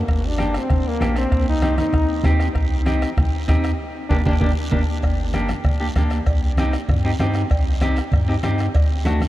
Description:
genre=latin, cumbia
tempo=194 BPM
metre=4/4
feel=straight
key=G minor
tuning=A4 = 442 Hz
part: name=clear trombone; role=second line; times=0.0-4.8 s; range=Bb3 to Eb4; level=-26 LUFS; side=left 1 dB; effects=none
part: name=pure sine sub bass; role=bass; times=0.0-9.2 s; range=G1 to G2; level=-22 LUFS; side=equal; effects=none
part: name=bombo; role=percussion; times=0.1-9.3 s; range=none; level=-21 LUFS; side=equal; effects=none
part: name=guiro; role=percussion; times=0.1-9.3 s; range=none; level=-40 LUFS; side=right 3 dB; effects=none
part: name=timbales and cowbell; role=percussion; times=0.1-9.2 s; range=none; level=-36 LUFS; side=right 4 dB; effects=none
part: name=clean electric guitar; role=accompaniment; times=0.4-9.2 s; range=A3 to G4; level=-25 LUFS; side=equal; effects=none
part: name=congas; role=percussion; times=0.4-9.3 s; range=none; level=-28 LUFS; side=equal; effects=none
room=moderate huge ambient reverb, RT60 6.1 s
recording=dreamy mix soaked in reverb, cassette tape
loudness=-17 LUFS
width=side -15 dB against mid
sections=0.0-5.0 A section; 5.0-9.3 B section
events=trombone solo 0.0-5.0; drum fill 3.8-5.0; band accent 3.8-5.0; clean electric guitar fill 4.4-5.0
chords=0.1 Gm; 1.3 Cm; 3.8 Gm; 6.3 Cm; 8.7 D

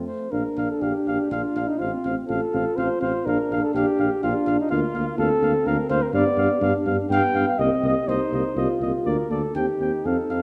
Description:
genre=classical, brass quintet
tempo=123 BPM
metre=3/4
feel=rubato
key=Bb major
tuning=A4 = 440 Hz
part: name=mellow flugelhorn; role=second line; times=0.0-10.4 s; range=Eb4 to G5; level=-28 LUFS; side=equal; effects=none
part: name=dark trombone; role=accompaniment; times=0.0-10.4 s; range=Bb3 to D4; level=-33 LUFS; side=equal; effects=none
part: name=mellow French horn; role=accompaniment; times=0.0-10.4 s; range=A3 to F4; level=-30 LUFS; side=equal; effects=none
part: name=mellow tuba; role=bass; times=0.0-10.4 s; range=A1 to G2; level=-28 LUFS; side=equal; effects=none
part: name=warm trumpet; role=melody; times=0.3-10.4 s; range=D5 to G5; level=-33 LUFS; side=equal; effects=none
room=wet recital hall reverb, RT60 1.5 s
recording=none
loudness=-23 LUFS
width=mono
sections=0.3-10.4 A section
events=none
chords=0.3 Bb; 1.8 F/A; 3.3 Bb; 4.7 Bb/D; 6.1 G7; 7.6 Cm7; 9.1 Bb/D; 9.5 Cm/Eb

